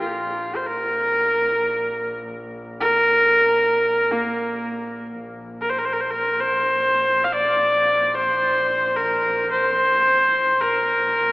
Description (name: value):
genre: mongolian traditional, Mongolian folk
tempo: free time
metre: none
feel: none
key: Bb gong mode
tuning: A4 = 439 Hz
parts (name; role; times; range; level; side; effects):
- clear horsehead fiddle; melody; 0.0-11.3 s; Bb3 to F5; -18 LUFS; equal; none
- clear double bass; drone; 0.0-11.3 s; Bb1; -38 LUFS; equal; none
room: wet church reverb, RT60 3.8 s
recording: recorded in a church or concert hall, AM radio sound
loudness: -17 LUFS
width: side -21 dB against mid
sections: 0.0-5.2 A section; 5.2-11.3 A section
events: none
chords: none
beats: free time